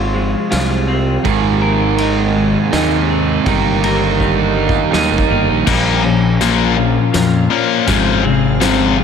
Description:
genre	post-rock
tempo	81 BPM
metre	3/4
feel	straight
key	Bb dorian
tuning	A4 = 439 Hz
part	soft additive organ-like pad	sustained chords	0.0-9.0 s	C3 to F5	-23 LUFS	equal	ensemble chorus, built-in reverb
part	clean electric guitar	arpeggios	0.0-9.0 s	Bb2 to C5	-20 LUFS	left 2 dB	wide subtle chorus, ping-pong delay
part	fuzz fingered electric bass	bass	0.0-9.0 s	F1 to F2	-18 LUFS	equal	overdrive
part	loose indie drum kit	drums	0.5-8.8 s	crash cymbal, hi-hat, kick drum, ride cymbal, snare drum	-22 LUFS	equal	none
part	fuzz guitar	riff	1.2-5.7 s	Ab2 to Eb4	-17 LUFS	right 10 dB	distortion
part	cranked stack guitar	riff	5.7-9.0 s	F2 to Bb3	-14 LUFS	left 8 dB	overdrive
room	moderate lush hall reverb, RT60 2.8 s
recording	dreamy mix soaked in reverb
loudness	-12 LUFS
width	side -7 dB against mid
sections	0.0-5.7 A section; 5.7-9.0 B section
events	drum fill 4.2-5.7, 5.7-9.0; build-up 5.7-9.0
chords	0.0 Fm/Ab; 1.2 Abadd9; 3.5 Eb/G; 5.7 Bbm; 7.9 Fm/Ab

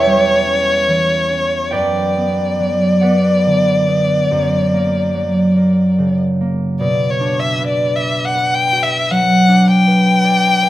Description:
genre	classical, romantic duo for violin and harp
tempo	46-53 BPM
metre	4/4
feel	rubato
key	B minor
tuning	A4 = 440 Hz
part	warm violin	melody	0.0-10.7 s	C#5 to G5	-15 LUFS	left 2 dB	none
part	concert harp	accompaniment	0.0-10.7 s	E2 to A5	-15 LUFS	right 1 dB	none
room	moderate recital hall reverb, RT60 1.3 s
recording	none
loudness	-12 LUFS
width	side -14 dB against mid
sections	0.0-6.8 A section; 6.8-10.7 B section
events	none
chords	0.0 C#dim/E; 1.7 Bm/F#; 4.3 F#; 6.8 Bm

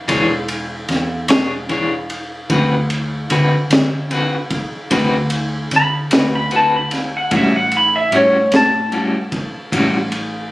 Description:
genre	slow blues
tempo	50 BPM (dotted quarters)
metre	12/8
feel	straight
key	A mixolydian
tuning	A4 = 440 Hz
part	clean lap steel guitar	melody	0.0-10.1 s	C#5 to B5	-14 LUFS	equal	none
part	vintage muted fingered electric bass	bass	0.0-10.5 s	E1 to D3	-23 LUFS	equal	none
part	electric guitar at the edge of break-up	accompaniment	0.1-10.0 s	A2 to C#5	-18 LUFS	left 1 dB	tremolo
part	crunchy breakbeat drum kit	drums	0.1-10.3 s	kick drum, ride cymbal, snare drum	-20 LUFS	equal	none
room	light reverb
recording	recorded on a phone in the room, club reverb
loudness	-14 LUFS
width	side -18 dB against mid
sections	0.0-10.5 A section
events	electric slide guitar solo 0.0-10.5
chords	0.0 E6; 2.5 D6; 7.3 A6

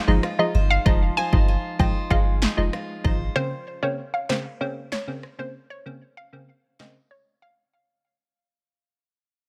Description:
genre	dancehall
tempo	96 BPM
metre	4/4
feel	straight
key	unclear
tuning	A4 = 440 Hz
part	hollow square pluck	melody	0.0-7.5 s	C5 to Ab5	-30 LUFS	equal	chorus, tape echo
part	wavetable chord stab	accompaniment	0.0-7.0 s	Db3 to Eb4	-30 LUFS	equal	none
part	picked steel-string acoustic guitar	arpeggios	0.0-3.9 s	F3 to C5	-34 LUFS	equal	none
part	punchy sub bass	bass	0.1-3.3 s	F1 to Ab1	-25 LUFS	equal	none
part	deep house drum kit	drums	0.2-6.9 s	handclaps, kick drum, rim click, snare drum	-26 LUFS	equal	none
room	digital ambience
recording	none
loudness	-23 LUFS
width	mono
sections	0.0-8.4 A section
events	fade-out 0.0-8.4; break 7.1-8.4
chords	0.0 Fm7; 3.4 Bbmadd9

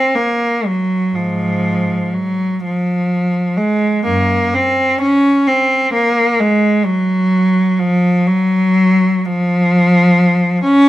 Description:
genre	classical, free, expressive piece for unaccompanied cello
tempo	42 BPM (dotted quarters)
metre	6/8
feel	uneven beats, rubato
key	unclear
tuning	A4 = 444 Hz
part	clear cello	solo	0.0-10.9 s	Gb2 to Db4	-12 LUFS	equal	none
room	light reverb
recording	close, detailed microphones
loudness	-12 LUFS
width	side -15 dB against mid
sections	0.0-10.9 A section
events	none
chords	none

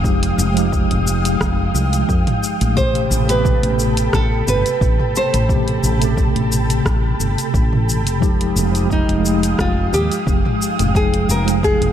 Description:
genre	sunset chillout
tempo	88 BPM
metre	4/4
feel	swing 54% on 16ths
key	unclear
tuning	A4 = 445 Hz
part	mellow tine electric piano	accompaniment	0.0-11.9 s	B2 to G5	-21 LUFS	moving between left 3 dB and right 7 dB	medium stereo tremolo, auto-pan, vintage 12-bit sampler grit, digital delay
part	ethereal airy pad	sustained chords	0.0-11.9 s	Ab3 to Eb6	-24 LUFS	equal	ensemble chorus, built-in reverb
part	woody fretless electric bass	bass	0.0-11.9 s	F1 to F2	-19 LUFS	equal	none
part	electronic kick drum	drums	0.0-11.8 s	none	-20 LUFS	equal	none
part	deep house drum kit	drums	0.1-11.9 s	hi-hat, rim click, shaker, toms	-25 LUFS	equal	none
part	nylon-string guitar	melody	2.8-11.9 s	Eb4 to C5	-21 LUFS	right 1 dB	digital delay
room	light reverb, digital ambience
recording	none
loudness	-14 LUFS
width	side -10 dB against mid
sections	0.0-11.9 A section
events	none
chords	0.0 Fm9; 2.8 Am9; 8.2 Fm9

